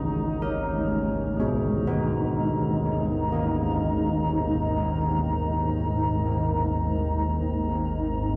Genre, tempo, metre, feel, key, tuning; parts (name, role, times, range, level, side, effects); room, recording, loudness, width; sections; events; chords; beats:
dark ambient drone; free time; G# minor; A4 = 443 Hz
mellow duduk; melody; 0.0-2.3 s; C#4 to D#4; -46 LUFS; equal
granular cloud pad; sustained chords; 0.0-8.4 s; G#3 to A#5; -30 LUFS; equal; built-in reverb
carillon bells; arpeggios; 0.0-8.4 s; B2 to A#4; -32 LUFS; equal; dub echo
organ-like drone; drone; 0.0-8.4 s; G#1 to D#2; -30 LUFS; equal; ensemble chorus, built-in reverb
wet spring reverb, RT60 2.6 s; echo-heavy mix; -26 LUFS; mono
0.0-8.4 A section
0.0 G#m
free time